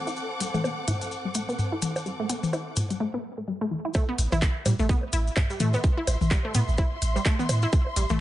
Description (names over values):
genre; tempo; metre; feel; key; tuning
minimal techno; 127 BPM; 4/4; swing 58% on 16ths; A dorian; A4 = 440 Hz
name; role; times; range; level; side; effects
punchy sub bass; bass; 0.0-8.2 s; A1 to A2; -26 LUFS; right 1 dB; tube saturation, sidechain pumping, high-pass filter
warm symphonic string section; texture; 0.0-8.2 s; C4 to D6; -34 LUFS; equal; sidechain pumping
resonant blip pluck; riff; 0.1-8.2 s; E3 to E4; -30 LUFS; equal; chorus, sidechain pumping, tape echo
maracas; percussion; 0.1-8.2 s; none; -38 LUFS; left 4 dB; none
minimal click drum kit; drums; 0.4-8.1 s; handclaps, hi-hat; -31 LUFS; equal; none
electronic toms and bongos; percussion; 0.5-8.2 s; none; -30 LUFS; left 2 dB; none
electronic kick drum; drums; 3.9-7.8 s; none; -23 LUFS; equal; none
room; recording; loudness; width
light reverb, digital ambience; nothing above 10.9 kHz; -24 LUFS; side -14 dB against mid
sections
0.0-3.9 A section; 3.9-8.2 B section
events
drop 3.9-8.2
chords
0.0 Am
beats
| 0.17 0.64 1.11 1.59 | 2.06 2.53 3.00 3.48 | 3.95 4.42 4.89 5.37 | 5.84 6.31 6.78 7.25 | 7.73 8.20